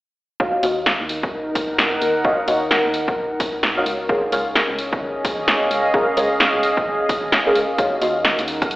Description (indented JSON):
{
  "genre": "UK garage, two-step garage",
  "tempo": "130 BPM",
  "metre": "4/4",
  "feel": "swing 61% on 16ths",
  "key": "Eb minor",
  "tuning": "A4 = 440 Hz",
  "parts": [
    { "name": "deep mellow chord stab", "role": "stabs", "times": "0.4-8.2 s", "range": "Gb4 to F5", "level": "-21 LUFS", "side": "equal", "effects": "chorus, phaser, dub echo" },
    { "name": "electronic kick drum", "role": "drums", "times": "0.4-8.7 s", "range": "none", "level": "-23 LUFS", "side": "equal", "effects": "none" },
    { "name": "warbly tape-like pad", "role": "texture", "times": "1.0-8.8 s", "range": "Db4 to Gb5", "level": "-21 LUFS", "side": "equal", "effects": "chorus, built-in reverb, sidechain pumping" },
    { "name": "organ-like FM bass", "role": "bass", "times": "0.6-8.8 s", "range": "Eb1 to Eb2", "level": "-37 LUFS", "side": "equal", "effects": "none" },
    { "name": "punchy analog drum machine", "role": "drums", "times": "0.6-8.8 s", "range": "hi-hat, rim click, snare drum", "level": "-19 LUFS", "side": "equal", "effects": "none" }
  ],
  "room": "moderate lush hall reverb, RT60 1.6 s",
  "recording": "played on a big sound system in a bare room, stone room reverb, telephone sound",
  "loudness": "-17 LUFS",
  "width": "side -18 dB against mid",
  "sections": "0.4-8.8 A section",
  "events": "none",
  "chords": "0.4 Ebm9; 3.9 Db6; 7.8 Ebm9"
}